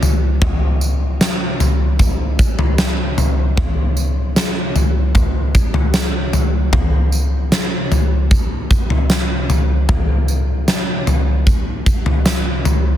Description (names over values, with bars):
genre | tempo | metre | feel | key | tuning
dream pop | 76 BPM | 4/4 | straight | none | none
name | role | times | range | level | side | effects
huge arena drum kit | drums | 0.0-12.8 s | kick drum, snare drum, tambourine, toms | -14 LUFS | equal | none
room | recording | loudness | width
little or no reverb | dense, heavily limited modern master | -14 LUFS | side -11 dB against mid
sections
0.0-13.0 A section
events
none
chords
none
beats
| 0.42 1.21 2.00 2.79 | 3.58 4.37 5.15 5.94 | 6.73 7.52 8.31 9.10 | 9.89 10.68 11.47 12.26